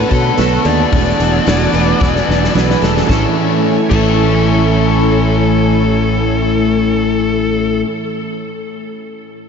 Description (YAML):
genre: rock, shoegaze and dream pop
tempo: 111 BPM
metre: 4/4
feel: straight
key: A major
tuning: A4 = 439 Hz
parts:
  - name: fuzz lead guitar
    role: melody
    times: 0.0-7.8 s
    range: A4 to D5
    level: -20 LUFS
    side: left 2 dB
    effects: distortion, diffuse ambient delay
  - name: string machine, violas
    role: sustained chords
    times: 0.0-7.0 s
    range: A3 to E6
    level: -21 LUFS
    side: left 1 dB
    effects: ensemble chorus
  - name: picked twelve-string acoustic guitar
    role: arpeggios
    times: 0.0-4.6 s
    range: G#4 to D5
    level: -24 LUFS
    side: right 4 dB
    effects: analog chorus, diffuse ambient delay
  - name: biting overdriven guitar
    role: riff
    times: 0.0-7.9 s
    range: A2 to A4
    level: -18 LUFS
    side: left 10 dB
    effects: lush chorus
  - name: clean electric guitar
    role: riff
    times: 0.0-7.9 s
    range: A2 to F#4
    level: -19 LUFS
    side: right 8 dB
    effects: reverse reverb
  - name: fingered electric bass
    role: bass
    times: 0.0-7.8 s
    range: E1 to B2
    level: -17 LUFS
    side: equal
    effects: none
  - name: loose indie drum kit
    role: drums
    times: 0.1-4.1 s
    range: crash cymbal, hi-hat, kick drum, snare drum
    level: -20 LUFS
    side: equal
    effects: none
room: wet huge ambient reverb, RT60 7.1 s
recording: dreamy mix soaked in reverb, nothing above 7.7 kHz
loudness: -11 LUFS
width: side -6 dB against mid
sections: 0.0-3.1 A section; 3.1-7.4 B section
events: drum fill 2.0-3.1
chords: 0.0 D6; 0.9 E9sus4; 3.1 Amaj7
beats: 0.39 | 0.93 1.47 2.01 2.55 | 3.10 3.64 4.18 4.72 | 5.26 5.80 6.35 6.89